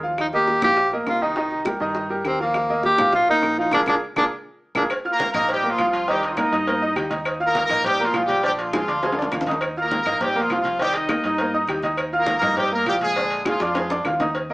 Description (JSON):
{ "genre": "latin, salsa", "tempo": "204 BPM", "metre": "4/4", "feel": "straight", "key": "Eb major", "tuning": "A4 = 440 Hz", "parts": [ { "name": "bright concert grand piano", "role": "accompaniment", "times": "0.0-14.5 s", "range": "D3 to F6", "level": "-23 LUFS", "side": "right 1 dB", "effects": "none" }, { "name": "deep dub fingered electric bass", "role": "bass", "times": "0.0-14.5 s", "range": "Bb1 to G2", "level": "-35 LUFS", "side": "equal", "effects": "none" }, { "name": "breathy tenor saxophone", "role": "melody", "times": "0.2-4.8 s", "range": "Bb3 to G4", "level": "-19 LUFS", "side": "equal", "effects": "none" }, { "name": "bongos and cowbell", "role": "percussion", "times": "0.2-14.5 s", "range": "none", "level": "-29 LUFS", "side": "equal", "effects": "none" }, { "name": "claves", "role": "percussion", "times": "0.2-14.2 s", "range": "none", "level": "-31 LUFS", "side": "left 1 dB", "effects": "none" }, { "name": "congas", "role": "percussion", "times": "0.2-14.5 s", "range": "none", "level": "-31 LUFS", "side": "equal", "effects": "none" }, { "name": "brilliant horn section", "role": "melody", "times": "5.1-14.2 s", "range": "F3 to Eb5", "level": "-22 LUFS", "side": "equal", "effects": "none" } ], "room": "wet studio reverb, RT60 0.7 s", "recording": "band playing live in one room, small speaker sound", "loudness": "-19 LUFS", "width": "side -22 dB against mid", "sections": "0.0-4.9 A section; 4.9-14.3 B section", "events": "band accent 3.7-4.9; drum fill 8.7-9.6, 13.5-14.3", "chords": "0.2 Ebadd9; 1.4 Cm7; 2.5 Ebadd9; 3.7 Bb7; 4.9 Ebadd9; 6.1 Cm7; 7.3 Ebadd9; 8.4 Bb7; 9.6 Ebadd9; 10.8 Cm7; 12.0 Ebadd9; 13.2 Bb7", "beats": "| 0.19 0.48 0.78 1.07 | 1.37 1.66 1.96 2.25 | 2.55 2.84 3.13 3.43 | 3.72 4.02 4.31 4.61 | 4.90 5.20 5.49 5.79 | 6.08 6.37 6.67 6.96 | 7.26 7.55 7.85 8.14 | 8.44 8.73 9.03 9.32 | 9.62 9.91 10.21 10.50 | 10.80 11.09 11.39 11.68 | 11.98 12.28 12.57 12.87 | 13.16 13.46 13.75 14.05 | 14.35" }